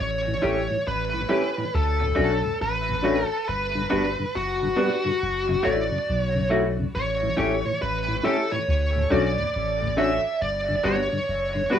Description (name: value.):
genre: reggae.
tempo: 69 BPM.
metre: 4/4.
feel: swing 64% on 16ths.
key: A mixolydian.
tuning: A4 = 440 Hz.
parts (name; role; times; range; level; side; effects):
high-gain lead guitar; melody; 0.0-11.8 s; F#4 to E5; -25 LUFS; right 1 dB; distortion, dub echo.
soft dub sub bass; bass; 0.0-11.7 s; F#1 to D2; -28 LUFS; equal; tube saturation.
mellow tonewheel organ; accompaniment; 0.3-11.8 s; D2 to G4; -29 LUFS; left 1 dB; chorus vibrato, slow rotary speaker, cassette tape.
clean electric guitar; accompaniment; 0.4-11.8 s; A3 to G4; -30 LUFS; right 1 dB; wide subtle chorus, cassette tape, dub echo.
dark upright piano; stabs; 0.4-11.8 s; D4 to C#5; -27 LUFS; left 4 dB; cassette tape.
room: moderate booth ambience, RT60 0.3 s.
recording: home recording on cassette.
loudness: -22 LUFS.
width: side -9 dB against mid.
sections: 0.0-11.8 A section.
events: none.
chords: 0.0 A7; 1.7 Dmaj7; 3.5 Gmaj7; 5.2 F#m7; 6.9 A7; 8.7 Dmaj7; 10.4 Gmaj7.